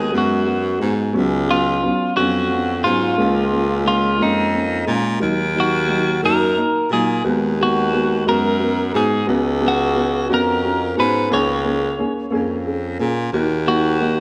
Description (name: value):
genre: six-eight pop ballad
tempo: 59 BPM (dotted quarters)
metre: 6/8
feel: straight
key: Eb minor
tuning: A4 = 444 Hz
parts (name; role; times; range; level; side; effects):
- twelve-string electric guitar; melody; 0.0-14.2 s; Eb4 to Db5; -23 LUFS; equal; none
- dark upright piano; accompaniment; 0.0-14.2 s; Gb3 to Ab4; -23 LUFS; equal; none
- clear baritone saxophone; bass; 0.0-14.2 s; Db2 to Bb2; -24 LUFS; equal; none
room: moderate concert hall reverb, RT60 2.3 s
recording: recorded in a church or concert hall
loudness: -19 LUFS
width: mono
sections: 0.0-14.2 A section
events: none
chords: 0.0 Abm7/Eb; 1.2 Db7sus4; 3.2 Bbm7/Db; 5.2 Ebm; 7.2 Abm7/Eb; 9.3 Db7sus4; 11.3 Bbm7/Db; 13.3 Ebm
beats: 0.14 | 1.16 2.17 | 3.19 4.20 | 5.21 6.23 | 7.24 8.26 | 9.27 10.28 | 11.30 12.31 | 13.32